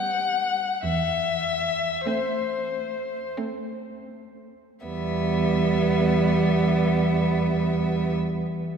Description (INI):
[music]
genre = classical, slow romantic movement for string quartet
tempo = 38-53 BPM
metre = 3/4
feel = rubato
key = E minor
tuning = A4 = 442 Hz
[part]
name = warm violin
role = melody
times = 0.0-8.1 s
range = C5 to F#5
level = -28 LUFS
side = left 5 dB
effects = none
[part]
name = rich violin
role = second line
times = 0.0-8.1 s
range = B3 to C4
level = -31 LUFS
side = right 1 dB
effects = none
[part]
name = rich viola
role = accompaniment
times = 0.0-8.1 s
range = G3 to A3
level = -28 LUFS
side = right 4 dB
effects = none
[part]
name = rich cello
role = bass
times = 0.8-8.1 s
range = E2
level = -25 LUFS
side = right 2 dB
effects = none
[sound]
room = wet church reverb, RT60 3.7 s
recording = recorded in a church or concert hall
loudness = -22 LUFS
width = side -7 dB against mid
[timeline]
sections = 0.0-4.9 A section; 4.9-8.8 B section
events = slowing down 0.0-4.9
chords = 0.0 Em (rootless); 0.8 Am/E; 4.9 Em